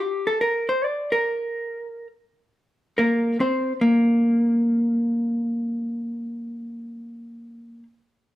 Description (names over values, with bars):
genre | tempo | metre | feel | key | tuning
jazz | 141 BPM | 3/4 | swing 66% on 8ths | Bb major | A4 = 439 Hz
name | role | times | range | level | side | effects
vintage hollow-body jazz guitar | solo | 0.0-7.8 s | Bb3 to D5 | -21 LUFS | equal | none
room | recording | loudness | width
wet studio reverb, RT60 1.0 s | none | -20 LUFS | side -14 dB against mid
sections
0.0-3.8 A section; 3.8-6.4 B section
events
none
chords
none